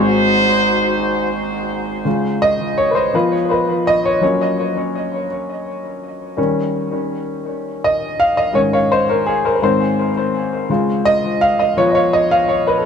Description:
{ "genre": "gospel", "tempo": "56 BPM (dotted quarters)", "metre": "6/8", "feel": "straight", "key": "Db major", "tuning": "A4 = 439 Hz", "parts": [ { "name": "clear horn section", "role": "melody", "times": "0.0-1.3 s", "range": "Eb4 to C5", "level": "-18 LUFS", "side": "equal", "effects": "tape echo" }, { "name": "clear concert grand piano", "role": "accompaniment", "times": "0.0-12.9 s", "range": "Ab1 to F5", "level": "-15 LUFS", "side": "left 1 dB", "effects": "tape echo" } ], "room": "moderate spring reverb, RT60 1.9 s", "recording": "echo-heavy mix", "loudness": "-14 LUFS", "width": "side -7 dB against mid", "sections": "0.0-2.1 A section; 2.1-12.9 B section", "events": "grand piano solo 2.1-12.9", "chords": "0.0 Ab7; 2.1 Db; 3.1 Db9/F; 4.2 Gb; 6.4 Eb7; 8.5 Absus4; 9.6 Ab; 10.7 Db; 11.8 Db9/F" }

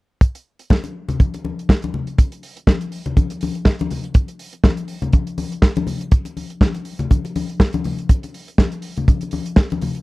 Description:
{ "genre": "disco", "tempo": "122 BPM", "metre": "4/4", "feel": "swing 56% on 16ths", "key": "none", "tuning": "none", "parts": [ { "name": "warm soul drum kit", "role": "drums", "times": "0.2-10.0 s", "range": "hi-hat, kick drum, snare drum", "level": "-12 LUFS", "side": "equal", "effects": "none" }, { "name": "congas", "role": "percussion", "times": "0.7-10.0 s", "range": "none", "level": "-24 LUFS", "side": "left 4 dB", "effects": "none" } ], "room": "studio reverb", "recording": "dry, close 1970s-style studio recording", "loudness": "-17 LUFS", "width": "side -20 dB against mid", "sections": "0.2-10.0 A section", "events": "none", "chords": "none" }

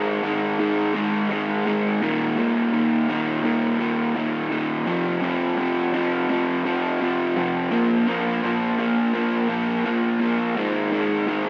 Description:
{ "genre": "rock", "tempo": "84 BPM", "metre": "4/4", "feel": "straight", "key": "unclear", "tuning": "A4 = 440 Hz", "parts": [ { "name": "raw garage guitar", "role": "solo", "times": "0.0-11.5 s", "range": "Eb2 to Bb3", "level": "-23 LUFS", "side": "equal", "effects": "overdrive, tape echo" } ], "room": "wet huge ambient reverb, RT60 4.6 s", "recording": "dreamy mix soaked in reverb", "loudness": "-23 LUFS", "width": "mono", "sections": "0.0-11.5 A section", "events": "none", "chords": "0.0 Ab5; 2.0 Eb5; 4.9 F5; 7.7 Bb5; 10.6 Ab5" }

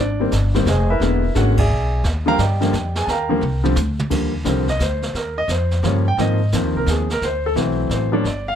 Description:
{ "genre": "jazz piano trio", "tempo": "174 BPM", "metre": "3/4", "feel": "swing 64% on 8ths", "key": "Eb major", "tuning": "A4 = 439 Hz", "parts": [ { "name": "warm grand piano", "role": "melody", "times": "0.0-8.6 s", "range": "Db3 to Bb5", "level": "-20 LUFS", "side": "left 1 dB", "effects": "none" }, { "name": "upright bass", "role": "bass", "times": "0.0-8.6 s", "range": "E1 to Ab2", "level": "-20 LUFS", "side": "equal", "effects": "none" }, { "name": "jazz brush drum kit", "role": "drums", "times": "0.3-8.6 s", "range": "brushed snare drum, crash cymbal, hi-hat, kick drum, snare drum, toms", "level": "-27 LUFS", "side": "right 3 dB", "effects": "none" } ], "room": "little or no reverb", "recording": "close, detailed microphones", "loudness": "-17 LUFS", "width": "side -9 dB against mid", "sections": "0.0-4.1 A section; 4.1-8.6 B section", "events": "band accent 1.5; drum fill 3.4-4.1; grand piano solo 4.1-8.6", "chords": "0.0 Abmaj9; 1.0 E7#11; 2.0 Ebmaj9; 5.1 Eb9; 6.2 Ab69; 7.2 D7" }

